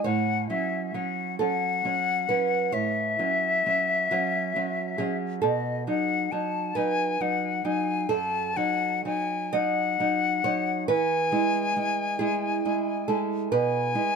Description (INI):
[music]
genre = romantic duo for flute and classical guitar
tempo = 45 BPM (dotted quarters)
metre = 12/8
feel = rubato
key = unclear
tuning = A4 = 435 Hz
[part]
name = bright silver concert flute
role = melody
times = 0.0-14.2 s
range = D#5 to A5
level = -26 LUFS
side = left 5 dB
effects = tape echo
[part]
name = nylon-string guitar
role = accompaniment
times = 0.0-14.2 s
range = F#2 to D#5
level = -27 LUFS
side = right 3 dB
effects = none
[sound]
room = light reverb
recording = close, detailed microphones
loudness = -24 LUFS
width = side -5 dB against mid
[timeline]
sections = 0.0-14.2 A section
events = none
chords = 0.1 F#m/A; 5.4 B7; 10.9 E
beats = | 0.06 1.41 2.74 4.12 | 5.43 6.76 8.09 9.54 | 10.89 12.21 13.52